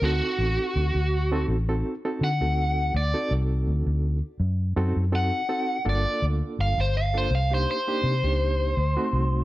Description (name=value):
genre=straight-eighth soul blues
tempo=82 BPM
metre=4/4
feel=swing 53% on 16ths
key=unclear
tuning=A4 = 440 Hz
part: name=biting overdriven guitar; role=melody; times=0.0-9.4 s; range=F#4 to F#5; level=-27 LUFS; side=equal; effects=slapback echo
part: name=barky reed electric piano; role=accompaniment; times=0.0-9.4 s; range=A3 to A4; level=-30 LUFS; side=right 2 dB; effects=overdrive, fast tremolo
part: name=vintage muted fingered electric bass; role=bass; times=0.0-9.4 s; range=G1 to D3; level=-24 LUFS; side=equal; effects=none
room=little or no reverb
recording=none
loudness=-22 LUFS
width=side -16 dB against mid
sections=0.0-9.4 A section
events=overdriven electric guitar solo 0.0-9.4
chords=0.0 D7b9; 5.9 Gm9; 7.3 Cm9; 8.8 D7b9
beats=| 0.03 0.76 1.49 2.22 | 2.95 3.68 4.41 5.13 | 5.86 6.59 7.32 8.05 | 8.78